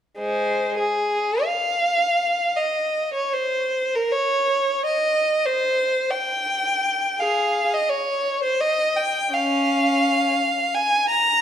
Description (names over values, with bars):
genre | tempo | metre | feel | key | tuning
classical, free, expressive piece for unaccompanied violin | 65-87 BPM | 3/4 | rubato | Ab major | A4 = 440 Hz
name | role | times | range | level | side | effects
rich violin | solo | 0.2-11.4 s | Ab3 to Bb5 | -19 LUFS | equal | none
room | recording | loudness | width
moderate recital hall reverb, RT60 1.6 s | none | -19 LUFS | side -9 dB against mid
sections
0.2-11.4 A section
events
none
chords
none